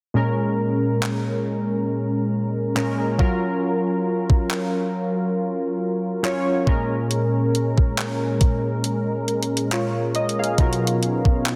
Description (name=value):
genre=contemporary R&B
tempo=69 BPM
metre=4/4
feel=swing 54% on 16ths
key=Bb phrygian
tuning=A4 = 438 Hz
part: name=warm analog keys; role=accompaniment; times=0.1-11.6 s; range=Bb2 to F5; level=-24 LUFS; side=equal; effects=chorus
part: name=warm analog pad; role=sustained chords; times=0.2-11.6 s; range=Gb3 to C#5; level=-30 LUFS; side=equal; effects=chorus
part: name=clean 12-bit digital drum machine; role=drums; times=1.0-11.6 s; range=handclaps, hi-hat, kick drum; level=-24 LUFS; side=equal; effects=overdrive
room=light reverb, digital ambience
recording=dense, heavily limited modern master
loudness=-22 LUFS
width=mono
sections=0.1-11.6 A section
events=none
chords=0.1 Bbm7; 3.2 Gbmaj7; 6.7 Bbm7; 10.6 Bmaj9#11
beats=| 0.15 1.02 1.89 2.76 | 3.63 4.50 5.37 6.24 | 7.11 7.98 8.85 9.71 | 10.59 11.45